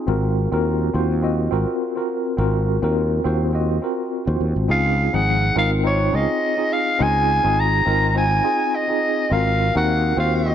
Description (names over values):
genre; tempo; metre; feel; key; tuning
sunset chillout; 104 BPM; 4/4; swing 54% on 16ths; Db major; A4 = 440 Hz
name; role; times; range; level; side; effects
bright tine electric piano; accompaniment; 0.0-10.5 s; F3 to Eb5; -22 LUFS; equal; fast stereo tremolo, auto-pan, low-pass filter, tape echo
sustaining fretless electric bass; bass; 0.1-10.5 s; Ab1 to Eb2; -20 LUFS; equal; none
growling soprano saxophone; melody; 4.7-10.5 s; Db5 to Bb5; -20 LUFS; equal; digital delay
room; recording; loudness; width
moderate lush hall reverb, RT60 2.5 s; dark, warm production; -17 LUFS; side -9 dB against mid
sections
0.0-10.5 A section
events
none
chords
0.1 Ab13; 4.7 Dbmaj9; 9.3 Ab13